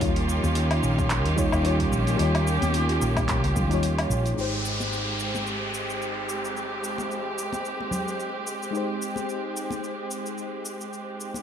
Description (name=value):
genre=sunset chillout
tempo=110 BPM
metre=4/4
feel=swing 56% on 16ths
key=Ab major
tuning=A4 = 440 Hz
part: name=mellow FM electric piano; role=accompaniment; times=0.0-11.4 s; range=G3 to Db5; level=-31 LUFS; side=left 2 dB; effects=chorus, auto-pan, cassette tape, ping-pong delay
part: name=warm studio string section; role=sustained chords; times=0.0-11.4 s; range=Eb3 to G4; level=-28 LUFS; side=right 2 dB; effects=none
part: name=woody fretless electric bass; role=bass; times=0.0-11.4 s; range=Ab1 to Eb2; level=-27 LUFS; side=equal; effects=tube saturation
part: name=deep house drum kit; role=drums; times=0.0-11.4 s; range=handclaps, hi-hat, shaker, woodblock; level=-33 LUFS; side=left 1 dB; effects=overdrive, small room ambience
part: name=electronic kick drum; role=drums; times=0.0-3.7 s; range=none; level=-30 LUFS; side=equal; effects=overdrive, small room ambience
part: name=congas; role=percussion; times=0.4-11.4 s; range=none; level=-35 LUFS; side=left 2 dB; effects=none
part: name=downlifter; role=sound effects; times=4.4-8.7 s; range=none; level=-33 LUFS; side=equal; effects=none
room=light reverb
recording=dark, warm production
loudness=-24 LUFS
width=side -8 dB against mid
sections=0.0-4.4 A section; 4.4-11.4 B section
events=none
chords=0.0 Eb9; 4.4 Abmaj7